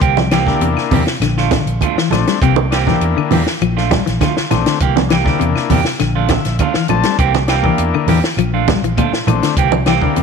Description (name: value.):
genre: afrobeat.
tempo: 101 BPM.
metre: 4/4.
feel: straight.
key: C mixolydian.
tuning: A4 = 440 Hz.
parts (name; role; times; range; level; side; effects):
semi-hollow electric guitar; arpeggios; 0.0-10.2 s; Bb2 to G3; -19 LUFS; left 10 dB; harmonic tremolo.
clean electric guitar; stabs; 0.0-10.2 s; E3 to G4; -20 LUFS; right 12 dB; spring reverb.
fingered electric bass; bass; 0.0-10.2 s; Bb1 to E2; -18 LUFS; equal; none.
compact cocktail drum kit; drums; 0.0-10.2 s; hi-hat, kick drum, snare drum; -20 LUFS; equal; none.
congas; percussion; 0.2-9.9 s; none; -19 LUFS; right 12 dB; none.
combo organ; accompaniment; 0.3-10.2 s; A3 to A5; -21 LUFS; left 12 dB; none.
claves; percussion; 0.3-10.0 s; none; -31 LUFS; left 12 dB; none.
room: light reverb, studio reverb.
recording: 1960s-style stereo with parts hard left and right.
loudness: -12 LUFS.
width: side -5 dB against mid.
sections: 0.0-10.2 A section.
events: transistor combo organ fill 6.0-7.2.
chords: 0.0 C7; 1.2 Bbmaj7; 2.4 C7; 3.6 Bbmaj7; 4.8 C7; 6.0 Bbmaj7; 7.2 C7; 8.4 Bbmaj7; 9.6 C7.